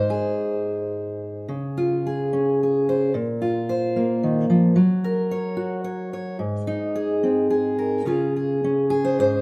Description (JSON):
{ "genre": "folk, solo fingerstyle acoustic guitar", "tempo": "109 BPM", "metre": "3/4", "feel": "rubato", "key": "Db major", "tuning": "A4 = 440 Hz", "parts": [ { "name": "fingerpicked steel-string acoustic guitar", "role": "solo", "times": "0.0-9.4 s", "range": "Ab2 to Db5", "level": "-23 LUFS", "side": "equal", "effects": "none" } ], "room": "moderate large studio reverb, RT60 1.3 s", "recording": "none", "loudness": "-23 LUFS", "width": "mono", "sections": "0.0-1.5 A section; 1.5-8.1 B section; 8.1-9.4 C section", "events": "none", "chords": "0.0 N.C.; 1.5 Dbmaj7; 3.1 Bbsus2; 4.8 Gb; 6.4 Ab; 8.1 Db" }